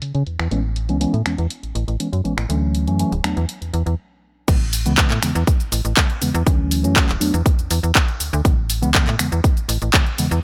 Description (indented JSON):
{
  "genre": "filtered disco house",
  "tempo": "121 BPM",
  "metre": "4/4",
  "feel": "straight",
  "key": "A major",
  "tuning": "A4 = 442 Hz",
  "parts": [
    { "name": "slap-like FM bass", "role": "bass", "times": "0.0-10.4 s", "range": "D1 to C#3", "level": "-23 LUFS", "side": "equal", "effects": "sidechain pumping, low-pass filter" },
    { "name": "house drum kit", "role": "drums", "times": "0.0-10.4 s", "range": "crash cymbal, finger snaps, handclaps, hi-hat, shaker", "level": "-24 LUFS", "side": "equal", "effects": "sidechain pumping on hats, low-pass filter on hats, studio reverb, low-pass filter on snare, sidechain pumping on perc, low-pass filter on perc, sidechain pumping on cymbals, low-pass filter on cymbals" },
    { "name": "mellow tine electric piano", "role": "accompaniment", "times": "0.5-10.3 s", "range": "C#3 to D4", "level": "-25 LUFS", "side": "equal", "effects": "phaser, sidechain pumping, low-pass filter" },
    { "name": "electronic kick drum", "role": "drums", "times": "4.5-10.0 s", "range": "none", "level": "-19 LUFS", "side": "equal", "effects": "studio reverb" }
  ],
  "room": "little or no reverb",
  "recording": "faint mains hum",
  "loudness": "-19 LUFS",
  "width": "mono",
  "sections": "0.0-4.5 A section; 4.5-10.4 B section",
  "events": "filter sweep 0.0-4.5; break 4.0-4.5; drop 4.5-10.4",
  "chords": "0.0 N.C.; 0.5 Amaj9; 2.5 Dmaj9; 3.2 N.C.; 4.5 Amaj9; 6.5 Dmaj9; 7.2 E7(no3); 8.4 Amaj9"
}